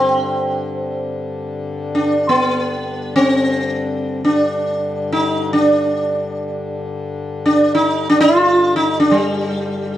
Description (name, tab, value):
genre	indian classical, Hindustani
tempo	free time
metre	none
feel	none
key	G raga charukeshi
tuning	A4 = 440 Hz
part	sitar	melody	0.0-10.0 s	G3 to F4	-15 LUFS	equal	plate reverb
part	hand-pumped harmonium	drone	0.0-10.0 s	G2 to D3	-24 LUFS	left 3 dB	none
room	wet studio reverb, RT60 0.5 s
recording	dark, warm production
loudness	-15 LUFS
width	side -12 dB against mid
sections	0.0-10.0 A section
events	none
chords	none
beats	free time